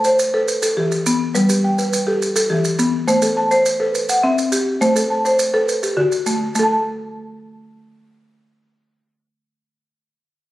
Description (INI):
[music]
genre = southern african traditional, mbira-style interlocking cycle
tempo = 138 BPM (dotted quarters)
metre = 12/8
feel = straight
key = A dorian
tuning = A4 = 440 Hz
[part]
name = buzzing marimba with medium mallets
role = arpeggios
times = 0.0-9.8 s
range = D3 to A5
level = -16 LUFS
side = equal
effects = none
[part]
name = maracas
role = percussion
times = 0.0-6.7 s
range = none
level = -25 LUFS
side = right 2 dB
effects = none
[sound]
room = moderate recital hall reverb, RT60 1.4 s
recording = recorded on a phone in the room, club reverb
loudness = -15 LUFS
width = side -15 dB against mid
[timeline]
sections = 0.0-6.5 A section; 6.5-10.0 B section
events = none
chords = 0.5 Em; 1.3 G; 2.2 Em; 3.1 Am; 3.9 C; 4.8 Am; 5.7 D; 6.5 N.C.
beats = 0.05 0.48 0.91 | 1.35 1.78 2.21 2.65 | 3.08 3.51 3.95 4.38 | 4.81 5.25 5.68 6.11 | 6.55 6.98 7.42 7.85 | 8.28 8.72 9.15 9.59